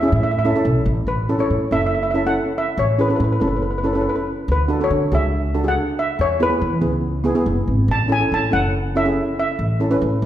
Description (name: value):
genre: calypso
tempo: 141 BPM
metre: 4/4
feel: straight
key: A major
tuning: A4 = 440 Hz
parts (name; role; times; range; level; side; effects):
- steel pan; melody; 0.0-10.2 s; B4 to A5; -22 LUFS; equal; none
- steel pan; accompaniment; 0.0-10.1 s; B3 to B4; -21 LUFS; right 1 dB; none
- upright bass; bass; 0.1-10.3 s; F#1 to E3; -21 LUFS; equal; none
room: wet recital hall reverb, RT60 1.7 s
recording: heard from further back in the room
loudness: -17 LUFS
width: side -11 dB against mid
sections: 0.0-1.1 A section; 1.1-10.3 B section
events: none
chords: 0.0 A; 4.5 Dmaj7; 6.2 E; 7.9 A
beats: 0.22 0.65 | 1.07 1.50 1.92 2.35 | 2.77 3.20 3.63 4.05 | 4.48 4.91 5.33 5.76 | 6.18 6.61 7.04 7.46 | 7.89 8.32 8.74 9.17 | 9.60 10.02